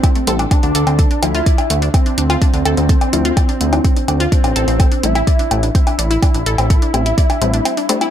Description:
melodic techno; 126 BPM; 4/4; straight; D minor; A4 = 440 Hz
expressive portamento lead; melody; 0.0-8.0 s; C4 to E4; -20 LUFS; right 1 dB; ensemble chorus, sidechain pumping, dub echo
analog pluck; arpeggios; 0.0-8.1 s; A3 to D5; -23 LUFS; left 1 dB; chorus, sidechain pumping, ping-pong delay
filtered dub chord stab; stabs; 0.0-8.1 s; F3 to E4; -23 LUFS; left 5 dB; chorus, cassette tape, sidechain pumping, ping-pong delay
electronic hi-hat and woodblock; drums; 0.0-8.1 s; -21 LUFS; left 1 dB
electronic kick drum; drums; 0.0-7.3 s; -14 LUFS; equal
fat analog bass; bass; 0.3-7.6 s; A1 to D2; -18 LUFS; equal; sidechain pumping
light reverb; -12 LUFS; side -10 dB against mid
0.0-8.1 A section
break 7.7-8.1
0.0 Am7; 0.5 Dmadd9; 4.3 Am7

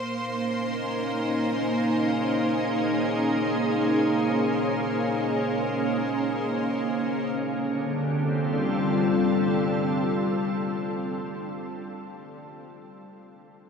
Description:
ambient; free time; A4 = 440 Hz
soft additive organ-like pad; sustained chords; 0.0-11.8 s; D3 to A4; -24 LUFS; equal; ensemble chorus, built-in reverb, shimmer reverb
bright studio violin section; texture; 0.0-7.3 s; C5 to C6; -35 LUFS; equal; shimmer reverb
wet huge ambient reverb, RT60 7.6 s; dark, warm production; -23 LUFS; side -6 dB against mid
0.0-7.3 A section; 7.3-11.3 B section
0.0 Bbmadd9; 7.3 Dm

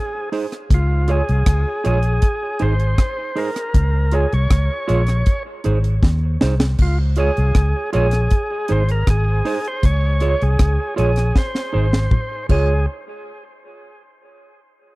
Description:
roots reggae; 79 BPM; 4/4; straight; Db major; A4 = 443 Hz
overdriven tonewheel organ; melody; 0.0-12.9 s; F4 to Db5; -25 LUFS; equal; dub echo
mellow electric guitar; accompaniment; 0.3-12.7 s; Eb4 to Db5; -26 LUFS; right 4 dB; spring reverb, dub echo
deep reggae drum kit; drums; 0.3-12.7 s; crash cymbal, hi-hat, kick drum, rim click, snare drum, toms; -17 LUFS; equal
vintage muted fingered electric bass; bass; 0.7-12.9 s; Ab1 to Eb2; -17 LUFS; equal
small room ambience; dry, close 1970s-style studio recording; -16 LUFS; side -21 dB against mid
0.0-6.8 A section; 6.8-12.9 B section; 12.9-15.0 C section
drum fill 6.0-6.8, 11.4-12.9
0.0 Ab; 0.7 Db; 2.2 Ab; 3.7 Db; 5.3 Ab; 6.8 Db; 8.3 Ab; 9.8 Db; 11.4 Ab; 12.5 Db; 12.9 N.C.

